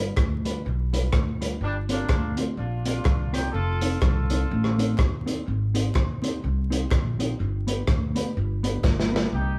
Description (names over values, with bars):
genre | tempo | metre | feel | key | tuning
ska | 125 BPM | 4/4 | swing 59% on 8ths | unclear | A4 = 441 Hz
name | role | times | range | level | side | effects
mellow electric guitar | accompaniment | 0.0-9.3 s | G3 to C5 | -34 LUFS | equal | spring reverb
upright bass | bass | 0.0-9.6 s | F1 to Eb2 | -29 LUFS | equal | none
crunchy breakbeat drum kit | drums | 0.2-9.3 s | hi-hat, kick drum, rim click, snare drum | -27 LUFS | equal | none
group handclap | percussion | 0.2-9.0 s | none | -48 LUFS | equal | dub echo
clear horn section | melody | 1.6-5.0, 9.3-9.6 s | G3 to A4 | -35 LUFS | equal | none
room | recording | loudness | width
moderate large studio reverb, RT60 0.8 s | band playing live in one room, vinyl crackle | -25 LUFS | mono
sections
0.0-9.3 A section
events
drum fill 8.8-9.3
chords
0.0 G7; 1.6 G7sus4; 3.5 F7; 5.5 Abmaj7; 7.4 G